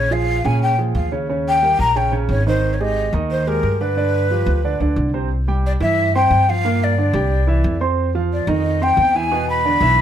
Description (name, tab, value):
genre	Afro-Cuban jazz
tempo	179 BPM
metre	4/4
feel	straight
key	C major from 5.3 s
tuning	A4 = 439 Hz
part	breathy mellow jazz flute	melody	0.0-10.0 s	Bb4 to B5	-18 LUFS	left 2 dB	none
part	warm concert grand piano	accompaniment	0.0-10.0 s	Bb2 to C6	-22 LUFS	right 4 dB	none
part	upright bass	bass	0.0-10.0 s	Ab1 to Bb2	-20 LUFS	equal	none
room	moderate large studio reverb, RT60 0.9 s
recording	none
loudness	-16 LUFS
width	side -10 dB against mid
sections	0.0-5.3 A section; 5.3-10.0 B section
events	none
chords	0.0 Bbm7; 1.3 Eb7; 2.6 Ab5; 4.0 G7; 5.3 C; 6.6 Gm; 7.3 C; 8.0 F5; 9.3 E5